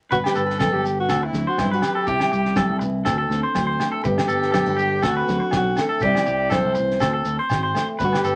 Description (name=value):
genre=highlife guitar band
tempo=122 BPM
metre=4/4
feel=swing 54% on 16ths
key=unclear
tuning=A4 = 441 Hz
part: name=breathy alto saxophone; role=melody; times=0.1-8.4 s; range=E4 to D5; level=-26 LUFS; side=equal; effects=none
part: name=nylon-string guitar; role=accompaniment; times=0.1-8.4 s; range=G2 to F#4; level=-31 LUFS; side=equal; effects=none
part: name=electric guitar at the edge of break-up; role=arpeggios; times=0.1-8.4 s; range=G4 to C5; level=-26 LUFS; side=equal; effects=none
part: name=fingered electric bass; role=bass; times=0.1-8.4 s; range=G1 to G2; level=-29 LUFS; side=equal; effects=none
part: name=cloth-damped thuddy drum kit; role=drums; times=0.1-8.2 s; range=kick drum, snare drum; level=-32 LUFS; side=equal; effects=none
part: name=congas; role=percussion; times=0.1-8.1 s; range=none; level=-31 LUFS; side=equal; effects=none
part: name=shekere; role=percussion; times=0.1-8.4 s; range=none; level=-38 LUFS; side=equal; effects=none
part: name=agogo bells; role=percussion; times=0.2-8.2 s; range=none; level=-31 LUFS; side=equal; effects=none
room=moderate small room ambience, RT60 0.5 s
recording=vinyl crackle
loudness=-21 LUFS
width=mono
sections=0.1-8.4 A section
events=none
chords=0.1 G; 1.1 D7; 2.1 C; 3.1 D7; 4.1 G; 5.0 D7; 6.0 C; 7.0 D7